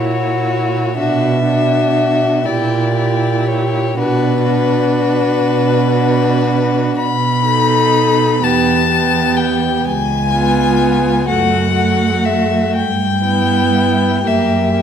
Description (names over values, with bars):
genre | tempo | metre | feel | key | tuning
classical, slow romantic movement for string quartet | 41 BPM (dotted quarters) | 6/8 | uneven beats, rubato | B minor | A4 = 440 Hz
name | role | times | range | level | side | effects
warm violin | melody | 0.0-14.8 s | B4 to B5 | -17 LUFS | left 6 dB | none
warm violin | second line | 0.0-14.8 s | E4 to A4 | -21 LUFS | left 3 dB | none
warm viola | accompaniment | 0.0-14.8 s | A3 to E4 | -18 LUFS | right 3 dB | none
warm cello | bass | 0.0-14.8 s | C#2 to B2 | -18 LUFS | right 4 dB | none
room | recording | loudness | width
wet recital hall reverb, RT60 1.7 s | none | -12 LUFS | side -8 dB against mid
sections
0.0-14.8 A section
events
none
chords
0.0 F#7/A#; 1.0 Bm; 2.5 A#dim7; 4.0 Bm; 7.0 B7; 8.4 Em; 9.8 C#7; 11.3 F#m; 12.7 Em/G; 14.3 F#7b9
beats
| 0.97 2.46 | 3.97 5.42 | 6.97 8.43 | 9.85 11.28 | 12.75 14.27